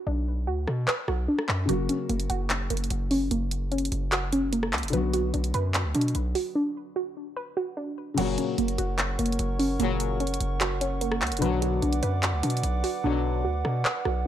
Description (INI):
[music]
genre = hip hop, trap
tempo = 148 BPM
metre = 4/4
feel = half-time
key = B harmonic minor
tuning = A4 = 440 Hz
[part]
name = warbly dusty pluck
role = arpeggios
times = 0.0-14.3 s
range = A#3 to B4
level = -29 LUFS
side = right 1 dB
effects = chorus, ping-pong delay
[part]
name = hard-hitting 808-style bass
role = bass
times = 0.1-14.2 s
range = F#1 to B2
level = -28 LUFS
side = equal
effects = none
[part]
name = trap drum kit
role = drums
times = 0.7-14.1 s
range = crash cymbal, handclaps, hi-hat, rim click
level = -30 LUFS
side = equal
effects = none
[part]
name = felt-muted upright piano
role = accompaniment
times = 1.7-14.3 s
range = C#3 to F#4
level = -33 LUFS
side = left 4 dB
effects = none
[part]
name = dark analog pad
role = sustained chords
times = 8.2-14.3 s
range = A#4 to D6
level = -33 LUFS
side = right 4 dB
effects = chorus
[part]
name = mellow brass ensemble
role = stabs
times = 8.2-13.4 s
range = A#2 to F#3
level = -31 LUFS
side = left 8 dB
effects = none
[sound]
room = light reverb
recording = dark, warm production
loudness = -24 LUFS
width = side -11 dB against mid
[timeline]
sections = 0.0-8.2 A section; 8.2-14.3 B section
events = break 0.0-1.7, 6.6-8.2; hi-hats muted 13.0-14.3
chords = 0.0 Bm; 1.7 F#; 4.9 Bm; 8.2 F#; 11.4 Bm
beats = | 0.07 0.47 0.88 1.28 | 1.69 2.09 2.50 2.90 | 3.31 3.72 4.12 4.53 | 4.93 5.34 5.74 6.15 | 6.55 6.96 7.37 7.77 | 8.18 8.58 8.99 9.39 | 9.80 10.20 10.61 11.01 | 11.42 11.82 12.23 12.63 | 13.04 13.45 13.85 14.26